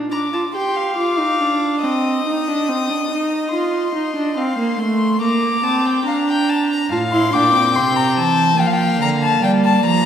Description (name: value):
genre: classical, baroque-style fugue for string quartet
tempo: 71 BPM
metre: 4/4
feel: straight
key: Bb major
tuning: A4 = 440 Hz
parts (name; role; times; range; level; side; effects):
- warm viola; accompaniment; 0.0-10.1 s; A3 to G4; -19 LUFS; right 2 dB; none
- warm violin; melody; 0.1-10.1 s; F5 to Eb6; -20 LUFS; left 5 dB; none
- rich violin; second line; 0.1-10.1 s; D5 to C6; -24 LUFS; left 1 dB; none
- rich cello; bass; 6.9-10.1 s; A2 to G3; -20 LUFS; right 3 dB; none
room: wet scoring stage reverb, RT60 2.0 s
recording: heard from further back in the room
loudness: -15 LUFS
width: side -8 dB against mid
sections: 0.1-10.1 A section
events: none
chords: 0.1 Bb/D (rootless); 1.8 Cm; 3.5 F; 5.2 Bb; 6.9 F/A; 8.6 Gm7